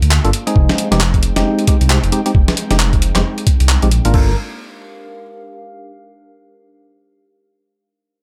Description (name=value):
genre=UK garage, two-step garage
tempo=134 BPM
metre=4/4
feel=swing 61% on 16ths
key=G minor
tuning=A4 = 440 Hz
part: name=warm analog pad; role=sustained chords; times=0.0-4.3 s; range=Ab3 to G5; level=-29 LUFS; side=equal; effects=chorus, sidechain pumping
part: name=dark detuned saw bass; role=bass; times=0.0-4.3 s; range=F1 to D2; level=-17 LUFS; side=equal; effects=tube saturation
part: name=boom bap sampler-style drum kit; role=drums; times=0.0-4.1 s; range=handclaps, hi-hat, snare drum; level=-21 LUFS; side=equal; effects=none
part: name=warbly tape-like pad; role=texture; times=0.0-5.9 s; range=Ab3 to F5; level=-37 LUFS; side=equal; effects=none
part: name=percussive organ stab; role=stabs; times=0.2-4.4 s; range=Ab3 to Bb4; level=-22 LUFS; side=equal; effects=chorus, tape echo
part: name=boom bap sampler-style drum kit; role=drums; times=0.6-4.3 s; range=crash cymbal, kick drum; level=-16 LUFS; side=equal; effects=none
room=digital ambience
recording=none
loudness=-14 LUFS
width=mono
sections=0.0-4.1 A section; 4.1-5.9 B section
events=filter sweep on synth stab 0.0-4.1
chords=0.3 Fm7; 4.1 Gm7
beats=0.11 | 0.56 1.00 1.45 1.90 | 2.35 2.80 3.24 3.69 | 4.14 4.59 5.03 5.48